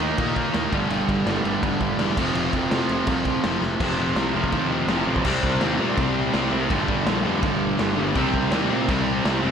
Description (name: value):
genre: punk rock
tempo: 166 BPM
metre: 4/4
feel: straight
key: unclear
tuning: A4 = 440 Hz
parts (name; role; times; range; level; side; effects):
- distorted electric guitar; riff; 0.0-9.5 s; F2 to Eb4; -26 LUFS; right 10 dB; distortion
- distorted electric guitar; riff; 0.0-9.5 s; F2 to Eb4; -27 LUFS; equal; overdrive
- sludgy distorted guitar; riff; 0.0-9.5 s; F2 to Eb4; -27 LUFS; left 11 dB; overdrive
- fuzz picked electric bass; bass; 0.0-9.5 s; E1 to Bb2; -28 LUFS; equal; overdrive
- raw garage drum kit; drums; 0.0-9.3 s; crash cymbal, kick drum, snare drum; -26 LUFS; equal; none
room: light reverb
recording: none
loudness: -20 LUFS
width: side -7 dB against mid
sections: 0.0-3.8 A section; 3.8-5.3 B section; 5.3-9.5 C section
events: drum fill 3.6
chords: 0.0 Eb5; 0.7 G5; 2.2 F5; 5.3 C5; 6.7 G5; 8.2 C5